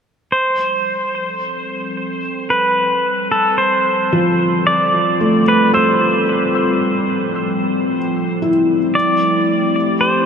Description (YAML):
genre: ambient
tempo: 56 BPM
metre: 4/4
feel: straight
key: unclear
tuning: A4 = 440 Hz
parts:
  - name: pedal steel guitar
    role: melody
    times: 0.3-10.3 s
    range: A4 to D5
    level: -16 LUFS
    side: equal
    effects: ping-pong delay
  - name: warbly tape-like pad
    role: sustained chords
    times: 0.6-10.3 s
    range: F3 to G5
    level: -21 LUFS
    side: equal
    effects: chorus, built-in reverb
  - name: felt-muted upright piano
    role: arpeggios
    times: 4.1-10.3 s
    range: F3 to E6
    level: -17 LUFS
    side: equal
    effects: ping-pong delay
room: wet huge ambient reverb, RT60 7.8 s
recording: none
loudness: -14 LUFS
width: side -6 dB against mid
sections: 0.3-10.3 A section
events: fade-in on ambient pad 0.3-10.3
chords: 0.3 G7sus4; 8.9 Am7